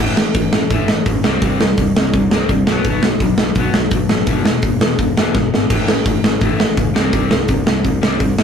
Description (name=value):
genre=punk rock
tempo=168 BPM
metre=4/4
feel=straight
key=unclear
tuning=A4 = 441 Hz
part: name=cranked stack guitar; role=riff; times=0.0-8.4 s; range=E2 to C4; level=-20 LUFS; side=left 3 dB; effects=overdrive
part: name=fuzz picked electric bass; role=bass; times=0.0-8.4 s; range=E1 to C#2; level=-21 LUFS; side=equal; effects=overdrive
part: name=big rock drum kit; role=drums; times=0.2-8.4 s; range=crash cymbal, hi-hat, kick drum, snare drum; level=-15 LUFS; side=equal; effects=none
room=light reverb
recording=rough rehearsal-room recording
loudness=-13 LUFS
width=side -7 dB against mid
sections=0.0-8.4 A section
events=drum fill 5.4-5.7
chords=0.0 A5; 1.2 C5; 2.7 B5; 4.3 E5; 5.7 A5; 7.0 C5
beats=0.35 0.71 1.06 | 1.42 1.78 2.14 2.50 | 2.85 3.21 3.57 3.93 | 4.28 4.64 5.00 5.36 | 5.71 6.07 6.43 6.78 | 7.14 7.50 7.85 8.21